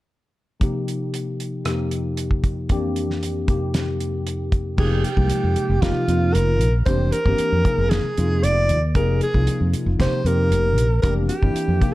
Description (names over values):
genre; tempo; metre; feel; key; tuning
electric jazz fusion; 115 BPM; 4/4; straight; F dorian; A4 = 439 Hz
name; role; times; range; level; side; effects
tine electric piano; accompaniment; 0.6-11.9 s; F2 to Ab4; -24 LUFS; left 2 dB; analog chorus
damped 70s drum kit; drums; 0.6-11.9 s; crash cymbal, hi-hat, kick drum, rim click, snare drum; -23 LUFS; equal; none
warm alto saxophone; melody; 4.8-11.9 s; F4 to D5; -23 LUFS; right 1 dB; none
fingered electric bass; bass; 4.8-11.8 s; F1 to F2; -20 LUFS; equal; none
room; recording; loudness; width
light reverb, studio ambience; dark, warm production; -18 LUFS; side -17 dB against mid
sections
0.6-4.8 A section; 4.8-11.9 B section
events
none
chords
0.6 Fsus2; 1.7 Ebadd9/F; 2.7 C7/F; 3.5 F9sus4; 4.8 Fm9; 5.8 Ebadd9/F; 6.9 C7/F; 7.7 Abadd9/F; 10.0 Ebadd9/F; 11.0 C7/F